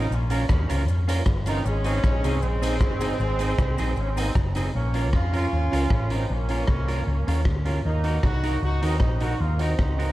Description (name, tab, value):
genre	ska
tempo	155 BPM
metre	4/4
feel	straight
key	Bb minor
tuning	A4 = 439 Hz
part	clear horn section	melody	0.0-10.1 s	Ab3 to Gb4	-30 LUFS	right 1 dB	analog delay
part	clean electric guitar	accompaniment	0.0-10.1 s	C4 to Bb4	-31 LUFS	right 3 dB	none
part	percussive tonewheel organ	stabs	0.0-10.1 s	Db4 to Db5	-38 LUFS	left 4 dB	none
part	hollow-body short-scale fingered electric bass	bass	0.0-10.1 s	Gb1 to F2	-25 LUFS	equal	none
part	cabasa	percussion	0.1-4.6 s	none	-46 LUFS	left 18 dB	none
part	raw garage drum kit	drums	0.3-10.1 s	hi-hat, kick drum, rim click	-26 LUFS	equal	none
room	light reverb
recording	dark, warm production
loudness	-21 LUFS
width	side -16 dB against mid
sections	0.0-4.7 A section; 4.7-10.1 B section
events	none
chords	0.0 Bbm; 1.7 Ab; 4.7 Bbm; 7.8 Ebm